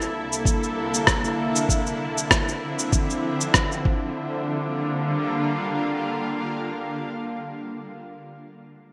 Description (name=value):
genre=sunset chillout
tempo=97 BPM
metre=4/4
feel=swing 55% on 16ths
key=G dorian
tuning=A4 = 440 Hz
part: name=shimmering ambient pad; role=sustained chords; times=0.0-7.4 s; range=C2 to A4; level=-28 LUFS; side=equal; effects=chorus, built-in reverb
part: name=electronic shaker and rim click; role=drums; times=0.0-3.8 s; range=none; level=-24 LUFS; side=equal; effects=overdrive, gated reverb
part: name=electronic kick drum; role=drums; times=0.5-4.0 s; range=none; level=-26 LUFS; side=equal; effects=overdrive
room=wet plate reverb, RT60 2.2 s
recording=bright 1980s-style digital production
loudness=-24 LUFS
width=mono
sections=0.0-4.2 A section; 4.2-6.6 B section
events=none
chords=0.0 C13; 1.7 Dm9; 3.9 Gm7